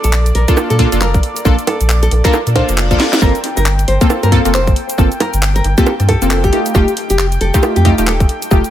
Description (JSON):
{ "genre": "UK garage, two-step garage", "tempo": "136 BPM", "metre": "4/4", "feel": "swing 60% on 16ths", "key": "G minor", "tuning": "A4 = 442 Hz", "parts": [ { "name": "nylon-string guitar", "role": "melody", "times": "0.0-8.2 s", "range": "G4 to D5", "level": "-19 LUFS", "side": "left 1 dB", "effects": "analog delay" }, { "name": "warm analog pad", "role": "sustained chords", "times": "0.0-8.7 s", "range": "D5 to G5", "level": "-27 LUFS", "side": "equal", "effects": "chorus, sidechain pumping" }, { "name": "saturated sub bass", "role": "bass", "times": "0.0-8.6 s", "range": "Eb1 to Bb2", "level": "-14 LUFS", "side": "equal", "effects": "none" }, { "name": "garage drum kit", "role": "drums", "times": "0.0-8.7 s", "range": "bongos, handclaps, hi-hat, rim click, shaker, snare drum", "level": "-19 LUFS", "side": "right 2 dB", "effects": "analog delay" }, { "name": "punchy chord stab", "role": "stabs", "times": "0.5-8.6 s", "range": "A3 to A4", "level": "-17 LUFS", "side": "equal", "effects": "chorus, dub echo" }, { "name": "electronic kick drum", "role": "drums", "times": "0.5-8.6 s", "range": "none", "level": "-13 LUFS", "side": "equal", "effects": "none" }, { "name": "reverse cymbal", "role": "sound effects", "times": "2.5-3.2 s", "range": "none", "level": "-25 LUFS", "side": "left 5 dB", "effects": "none" } ], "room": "light reverb, digital ambience", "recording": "echo-heavy mix", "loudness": "-11 LUFS", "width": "side -11 dB against mid", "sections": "0.0-8.7 A section", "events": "reverse cymbal 2.5-3.2; drum fill 3.0", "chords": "0.0 Bbmaj7; 3.2 Gm11; 6.5 F9" }